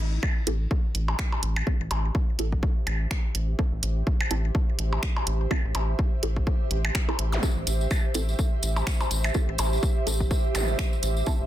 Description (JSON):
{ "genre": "minimal techno", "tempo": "125 BPM", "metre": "4/4", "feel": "swing 57% on 16ths", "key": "A minor", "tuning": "A4 = 440 Hz", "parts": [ { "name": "rubbery square bass", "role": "bass", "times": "0.0-11.5 s", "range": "A1", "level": "-26 LUFS", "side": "equal", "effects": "sidechain pumping" }, { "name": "ethereal airy pad", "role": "texture", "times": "1.5-11.5 s", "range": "G4 to E5", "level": "-34 LUFS", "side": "right 3 dB", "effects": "ensemble chorus, built-in reverb, sidechain pumping" }, { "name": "electronic kick drum", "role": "drums", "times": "0.2-11.4 s", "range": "none", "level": "-25 LUFS", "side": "equal", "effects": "overdrive" }, { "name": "percussion blips", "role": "percussion", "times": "0.2-10.7 s", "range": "none", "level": "-32 LUFS", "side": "equal", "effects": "ping-pong delay" }, { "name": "filtered dub chord stab", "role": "stabs", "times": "0.5-11.3 s", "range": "C4 to A4", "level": "-34 LUFS", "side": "right 2 dB", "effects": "phaser, wide subtle chorus, ping-pong delay" }, { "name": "house drum kit", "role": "drums", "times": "0.5-11.1 s", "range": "finger snaps, hi-hat", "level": "-32 LUFS", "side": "right 2 dB", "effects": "overdrive, soft clipping on snare" }, { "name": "zap", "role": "sound effects", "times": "7.3-7.4, 10.5-10.7 s", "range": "none", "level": "-35 LUFS", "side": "equal", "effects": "none" }, { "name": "tambourine", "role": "percussion", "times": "7.4-11.4 s", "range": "none", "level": "-36 LUFS", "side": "left 2 dB", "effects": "none" } ], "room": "light reverb", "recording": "dense, heavily limited modern master", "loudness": "-23 LUFS", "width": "side -13 dB against mid", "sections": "0.0-11.5 A section", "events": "fade-in on ambient pad 0.0-11.5; filter sweep on synth stab 0.0-11.5", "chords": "0.0 Am7" }